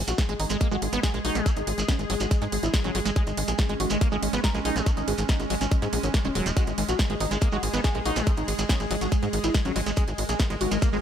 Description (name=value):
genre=psychedelic trance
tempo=141 BPM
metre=4/4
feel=straight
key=unclear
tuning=A4 = 439 Hz
part: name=evolving wavetable pad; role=sustained chords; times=0.2-11.0 s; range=G#3 to A#4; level=-32 LUFS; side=right 2 dB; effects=ensemble chorus, built-in reverb, sidechain pumping
part: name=tight sequencer bass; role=bass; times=0.0-11.0 s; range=D#1 to G#2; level=-29 LUFS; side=equal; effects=none
part: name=wide unison lead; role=melody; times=0.1-11.0 s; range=G#3 to A#4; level=-31 LUFS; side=equal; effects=phaser, sidechain pumping, digital delay
part: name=techno drum kit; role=drums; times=0.1-10.9 s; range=hi-hat, snare drum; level=-32 LUFS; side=right 1 dB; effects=none
part: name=shekere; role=percussion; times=0.1-11.0 s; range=none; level=-36 LUFS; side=right 4 dB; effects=none
part: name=liquid acid bass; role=riff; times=0.2-11.0 s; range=F#3 to D#4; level=-32 LUFS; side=moving between left 4 dB and right 4 dB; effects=chorus, auto-pan, sidechain pumping, dub echo
part: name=electronic kick drum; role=drums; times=0.2-10.9 s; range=none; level=-23 LUFS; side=equal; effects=none
part: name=riser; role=sound effects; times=10.0-11.0 s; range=none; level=barely audible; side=none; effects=none
room=little or no reverb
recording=none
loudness=-23 LUFS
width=side -9 dB against mid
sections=0.0-11.0 A section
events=none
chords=0.0 G#5